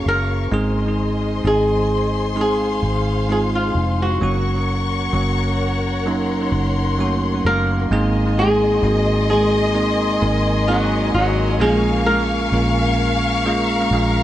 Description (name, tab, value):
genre	pop ballad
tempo	65 BPM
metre	4/4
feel	straight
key	unclear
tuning	A4 = 441 Hz
part	bell-like tine electric piano	accompaniment	0.0-14.2 s	Ab2 to Bb4	-22 LUFS	right 2 dB	tape echo
part	warm studio string section	sustained chords	0.0-14.2 s	Ab4 to Db6	-25 LUFS	left 4 dB	none
part	vintage muted fingered electric bass	bass	0.0-14.2 s	F1 to Bb1	-22 LUFS	equal	none
part	flamenco guitar	melody	0.1-13.4 s	Gb3 to Bb4	-21 LUFS	equal	tape echo
part	warm studio violin section	second line	7.9-14.2 s	Eb5 to F5	-24 LUFS	left 1 dB	none
room	light reverb, studio ambience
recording	echo-heavy mix, nothing above 11.0 kHz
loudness	-16 LUFS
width	side -13 dB against mid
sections	0.0-7.9 A section; 7.9-14.2 B section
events	none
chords	0.0 Gb; 0.5 Ab; 4.2 Gb; 7.9 Abadd9; 11.6 Bbm7